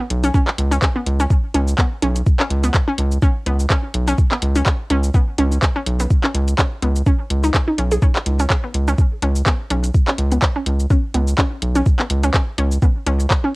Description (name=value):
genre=minimal techno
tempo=125 BPM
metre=4/4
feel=swing 56% on 16ths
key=unclear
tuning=A4 = 439 Hz
part: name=hollow square pluck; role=riff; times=0.0-13.5 s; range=B3 to G#4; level=-22 LUFS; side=equal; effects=chorus, cassette tape, sidechain pumping, analog delay
part: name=round analog bass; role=bass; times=0.1-13.3 s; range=B1 to C#2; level=-18 LUFS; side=equal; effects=sidechain pumping
part: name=booming analog drum machine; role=drums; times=0.1-13.4 s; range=cabasa, handclaps, hi-hat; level=-22 LUFS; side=equal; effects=cassette tape
part: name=electronic kick drum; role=drums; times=0.3-13.4 s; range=none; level=-16 LUFS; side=equal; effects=cassette tape
room=little or no reverb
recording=home recording on cassette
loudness=-15 LUFS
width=side -24 dB against mid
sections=0.0-13.6 A section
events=none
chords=0.0 C#5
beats=| 0.34 0.82 1.30 1.78 | 2.26 2.74 3.22 3.70 | 4.18 4.66 5.14 5.62 | 6.10 6.58 7.06 7.54 | 8.02 8.50 8.98 9.46 | 9.94 10.42 10.90 11.38 | 11.86 12.34 12.82 13.30